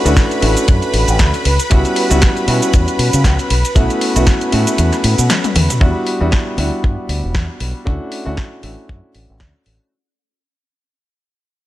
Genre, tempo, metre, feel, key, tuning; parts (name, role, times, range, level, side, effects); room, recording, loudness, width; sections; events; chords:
nu-disco, nu disco; 117 BPM; 4/4; swing 56% on 16ths; E dorian; A4 = 437 Hz
dark grand piano; accompaniment; 0.0-9.9 s; G3 to F#4; -19 LUFS; equal; vintage 12-bit sampler grit, tape echo
lush unison pad; sustained chords; 0.0-5.8 s; B4 to B5; -22 LUFS; equal; chorus, sidechain pumping
fingered electric bass with an envelope filter; bass; 0.1-9.8 s; E1 to C#3; -16 LUFS; equal
house drum kit; drums; 0.1-9.8 s; cabasa, hi-hat, ride cymbal, snare drum, toms; -20 LUFS; equal
kick drum; drums; 0.2-9.5 s; -13 LUFS; equal
studio ambience; -12 LUFS; side -15 dB against mid
0.0-5.8 A section; 5.8-9.9 B section
drop 0.0-5.8; kick drops out 4.8-5.8; drum fill 5.3-5.8; fade-out 5.8-9.9
0.0 Dmaj9; 1.4 Em69/C#; 3.5 B7sus4; 5.8 Em9; 7.9 Dmaj9